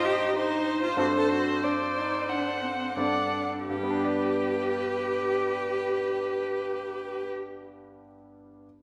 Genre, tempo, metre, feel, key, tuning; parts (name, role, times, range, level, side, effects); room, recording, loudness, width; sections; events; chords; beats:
quick classical-period movement for piano quartet; 84-96 BPM; 4/4; straight; A4 = 440 Hz
warm violin; melody; 0.0-7.3 s; B4 to F#5; -34 LUFS; equal
warm cello; second line; 0.0-7.3 s; C4 to A4; -33 LUFS; equal
bright concert grand piano; accompaniment; 0.0-8.7 s; G2 to D5; -35 LUFS; equal
warm viola; accompaniment; 0.0-7.3 s; G4 to Eb5; -35 LUFS; equal
wet recital hall reverb, RT60 1.8 s; -28 LUFS; mono
0.0-3.7 A section; 3.7-6.5 B section
slowing down 0.0-3.7
0.0 Cm/G; 1.0 D7/G; 3.7 G
0.34 | 0.98 1.63 2.29 2.97 | 3.69 4.39 5.10 5.81